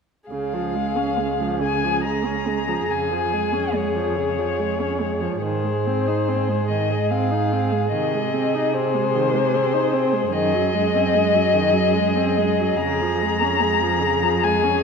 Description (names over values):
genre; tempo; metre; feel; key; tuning
classical, slow romantic movement for string quartet; 66-77 BPM; 3/4; rubato; Db major; A4 = 444 Hz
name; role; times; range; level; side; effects
muted violin; melody; 0.3-14.8 s; C5 to Bb5; -22 LUFS; left 7 dB; none
muted violin; second line; 0.3-14.8 s; Ab4; -26 LUFS; equal; none
muted viola; accompaniment; 0.3-14.8 s; Db3 to Eb4; -26 LUFS; right 5 dB; none
muted cello; bass; 0.3-14.8 s; Db2 to C3; -25 LUFS; right 5 dB; none
room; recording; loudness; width
wet scoring stage reverb, RT60 2.1 s; none; -19 LUFS; side -5 dB against mid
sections
0.3-14.8 A section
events
none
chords
0.3 Db; 2.9 Db/F; 5.4 Ab; 7.9 Ab/C; 10.3 Ab7/Gb; 12.8 Db/F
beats
| 0.31 1.19 2.04 | 2.90 3.75 4.58 | 5.42 6.27 7.10 | 7.92 8.74 9.53 | 10.33 11.13 11.94 | 12.81 13.62 14.43